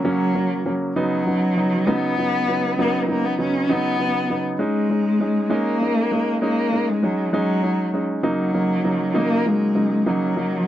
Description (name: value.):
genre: pop.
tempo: 66 BPM (dotted quarters).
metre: 6/8.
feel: straight.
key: unclear.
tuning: A4 = 440 Hz.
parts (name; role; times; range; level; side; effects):
warm cello; melody; 0.0-10.7 s; Gb3 to Db4; -21 LUFS; left 1 dB; none.
clear baby grand piano; accompaniment; 0.0-10.6 s; Db3 to Eb4; -22 LUFS; right 1 dB; none.
room: moderate booth ambience, RT60 0.2 s.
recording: dry, close 1970s-style studio recording.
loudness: -18 LUFS.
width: side -12 dB against mid.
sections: 0.0-10.7 A section.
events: none.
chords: 0.0 Gb/Db; 1.0 Cb/Db; 4.6 Dbsus2; 8.2 Ebm/Db.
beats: 0.05 | 0.96 1.87 | 2.78 3.69 | 4.60 5.51 | 6.42 7.33 | 8.24 9.15 | 10.06.